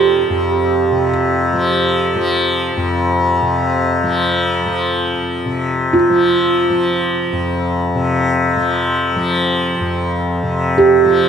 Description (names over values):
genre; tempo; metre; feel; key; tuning
world meditative, free-time meditation music; free time; none; none; unclear; A4 = 440 Hz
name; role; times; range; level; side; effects
tanpura; drone; 0.0-11.3 s; F2 to F3; -15 LUFS; left 2 dB; none
felt-muted upright piano; texture; 0.0-11.3 s; F4 to D5; -16 LUFS; right 4 dB; none
room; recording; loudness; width
wet cathedral reverb, RT60 5.2 s; none; -14 LUFS; side -7 dB against mid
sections
0.0-5.5 A section; 5.5-11.3 A section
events
none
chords
none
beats
free time